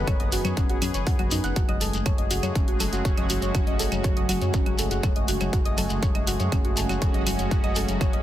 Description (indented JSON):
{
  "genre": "melodic techno",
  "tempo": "121 BPM",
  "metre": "4/4",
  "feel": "straight",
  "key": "F# dorian",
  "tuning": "A4 = 439 Hz",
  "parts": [
    { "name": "sweeping resonant pad", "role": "sustained chords", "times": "0.0-8.2 s", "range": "C#3 to B4", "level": "-31 LUFS", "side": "equal", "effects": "chorus, sidechain pumping" },
    { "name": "swelling detuned saw bass", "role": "bass", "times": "0.0-8.2 s", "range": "E1 to F#2", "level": "-29 LUFS", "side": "equal", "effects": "sidechain pumping" },
    { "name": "soft round pluck", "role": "arpeggios", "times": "0.1-8.2 s", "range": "C#4 to F#6", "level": "-31 LUFS", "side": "equal", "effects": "chorus, sidechain pumping, dub echo" },
    { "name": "electronic hi-hat, congas and claves", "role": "drums", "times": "0.1-8.2 s", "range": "none", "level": "-31 LUFS", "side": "left 2 dB", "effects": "overdrive, studio ambience" },
    { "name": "electronic kick drum", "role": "drums", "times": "0.1-8.1 s", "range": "none", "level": "-24 LUFS", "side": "equal", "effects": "distortion, overdrive, studio ambience" },
    { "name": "shekere", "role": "percussion", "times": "0.1-8.1 s", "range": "none", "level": "-35 LUFS", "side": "left 2 dB", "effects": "none" },
    { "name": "brassy analog pad", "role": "stabs", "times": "2.8-8.2 s", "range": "F#3 to F#4", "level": "-31 LUFS", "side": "right 1 dB", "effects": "chorus, sidechain pumping, dub echo" }
  ],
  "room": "little or no reverb",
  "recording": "dense, heavily limited modern master",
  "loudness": "-22 LUFS",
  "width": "side -12 dB against mid",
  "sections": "0.0-8.2 A section",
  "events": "none",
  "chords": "0.0 B/F#; 1.6 F#madd9"
}